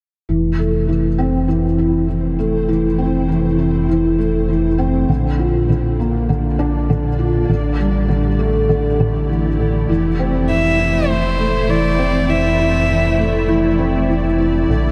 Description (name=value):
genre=electronica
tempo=100 BPM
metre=4/4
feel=straight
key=F major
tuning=A4 = 439 Hz
part: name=granular cloud pad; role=sustained chords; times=1.9-14.9 s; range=A3 to D5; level=-30 LUFS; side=equal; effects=built-in reverb, subtle chorus
part: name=felt-muted upright piano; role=riff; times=0.3-14.9 s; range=D3 to F4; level=-19 LUFS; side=equal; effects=ensemble chorus, analog delay
part: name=dark detuned saw bass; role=bass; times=0.3-14.9 s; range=F1 to Bb1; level=-22 LUFS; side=equal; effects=none
part: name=dark violin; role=melody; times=10.5-13.5 s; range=C5 to E5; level=-22 LUFS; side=equal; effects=analog delay
room=moderate huge ambient reverb, RT60 8.6 s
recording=dreamy mix soaked in reverb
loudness=-17 LUFS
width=mono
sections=0.3-14.9 A section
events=fade-in on ambient pad 0.3-14.9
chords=0.3 Fmaj7; 5.1 Bb; 7.5 A7sus4; 9.9 Fmaj7